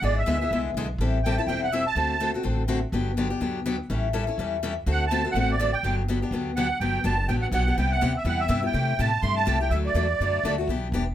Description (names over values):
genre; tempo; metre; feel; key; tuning
acoustic string swing (jazz manouche); 248 BPM; 4/4; swing 56% on 8ths; G major; A4 = 440 Hz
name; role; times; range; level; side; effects
musette accordion; melody; 0.0-2.3, 4.9-10.5 s; D5 to C6; -26 LUFS; right 4 dB; none
picked steel-string acoustic guitar; accompaniment; 0.0-11.0 s; C3 to A4; -27 LUFS; left 4 dB; none
upright bass; bass; 0.0-11.1 s; E1 to C3; -27 LUFS; equal; none
room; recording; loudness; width
light reverb; none; -22 LUFS; side -11 dB against mid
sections
0.0-6.8 A section; 6.8-11.1 B section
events
none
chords
0.0 E7/G#; 1.0 Am7; 2.0 D7; 2.9 Gmaj7; 3.9 A7; 4.9 D7; 5.8 Gmaj7; 7.8 Cmaj7; 8.7 Am7; 9.7 D